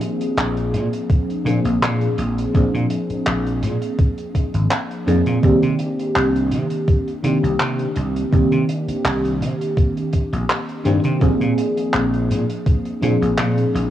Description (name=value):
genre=vaporwave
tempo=83 BPM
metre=4/4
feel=swing 53% on 16ths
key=unclear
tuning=A4 = 442 Hz
part: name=FM electric piano with soft pad layer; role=accompaniment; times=0.0-13.9 s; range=Eb3 to Ab4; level=-20 LUFS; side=equal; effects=tremolo, wide subtle chorus, tape echo
part: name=modern studio drum kit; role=drums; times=0.0-13.9 s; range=handclaps, hi-hat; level=-26 LUFS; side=equal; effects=none
part: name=vintage slap bass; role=bass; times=0.4-13.9 s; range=Ab1 to C3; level=-21 LUFS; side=equal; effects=tube saturation
part: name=electronic kick drum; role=drums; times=1.1-12.8 s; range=none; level=-16 LUFS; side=equal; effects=none
room=light reverb, small room ambience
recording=worn, warbling old tape, cassette tape, warbly pitch drift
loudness=-17 LUFS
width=side -12 dB against mid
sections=0.0-13.9 A section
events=none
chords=0.0 Bb9; 5.4 Cm9; 11.2 Bb9